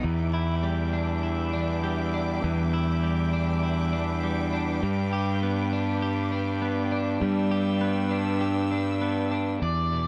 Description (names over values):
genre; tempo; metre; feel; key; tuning
rock; 100 BPM; 4/4; straight; unclear; A4 = 440 Hz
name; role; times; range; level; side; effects
warm studio string section; sustained chords; 0.0-10.1 s; D4 to E6; -39 LUFS; equal; none
twelve-string electric guitar; arpeggios; 0.0-10.1 s; E2 to G4; -32 LUFS; equal; spring reverb, analog delay
fuzz fingered electric bass; bass; 0.0-10.1 s; E2 to G2; -28 LUFS; equal; overdrive
octave-fuzz lead guitar; melody; 9.6-10.1 s; D5; -30 LUFS; equal; distortion
room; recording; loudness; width
light reverb, digital ambience; dark, warm production; -26 LUFS; mono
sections
0.0-9.6 A section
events
none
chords
0.0 Em7; 4.8 G